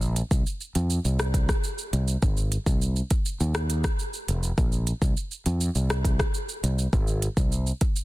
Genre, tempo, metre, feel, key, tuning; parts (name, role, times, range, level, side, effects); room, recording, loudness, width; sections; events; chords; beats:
dancehall; 102 BPM; 4/4; straight; A4 = 437 Hz
fretless electric bass; bass; 0.0-7.7 s; F1 to F2; -25 LUFS; equal
afro-pop drum kit; drums; 0.0-8.0 s; hi-hat, kick drum, rim click, shaker; -26 LUFS; equal
little or no reverb; dense, heavily limited modern master; -23 LUFS; side -19 dB against mid
0.0-8.0 A section
0.46 1.05 1.64 | 2.23 2.81 3.40 3.99 | 4.58 5.17 5.75 6.34 | 6.93 7.52